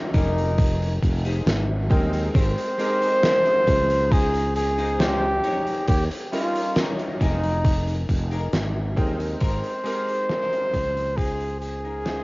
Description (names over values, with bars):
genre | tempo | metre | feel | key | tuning
vaporwave | 68 BPM | 4/4 | straight | F minor | A4 = 439 Hz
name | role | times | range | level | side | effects
bright electric grand piano | accompaniment | 0.0-12.2 s | G3 to G5 | -30 LUFS | equal | ensemble chorus, cassette tape
clean electric guitar | riff | 0.0-12.2 s | C4 to Db5 | -34 LUFS | left 4 dB | lush chorus, cassette tape, analog delay
warm flugelhorn | melody | 0.1-12.2 s | Eb4 to C5 | -24 LUFS | equal | cassette tape, tape echo
sustaining fretless electric bass | bass | 0.1-12.2 s | F1 to Eb2 | -25 LUFS | equal | none
electronic kick drum | drums | 0.1-11.4 s | none | -21 LUFS | equal | vintage 12-bit sampler grit, cassette tape
oversized low-tuned drum kit | drums | 0.1-12.2 s | cabasa, hi-hat, snare drum | -29 LUFS | equal | vintage 12-bit sampler grit, cassette tape
room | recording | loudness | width
small room ambience | home recording on cassette, nothing above 7.5 kHz | -20 LUFS | side -24 dB against mid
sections
0.0-12.2 A section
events
fade-out 7.1-12.2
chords
0.1 Fm11; 2.4 Abmaj9; 4.1 Dbmaj9; 5.4 Eb7; 7.2 Fm11; 9.4 Abmaj9; 11.2 Dbmaj9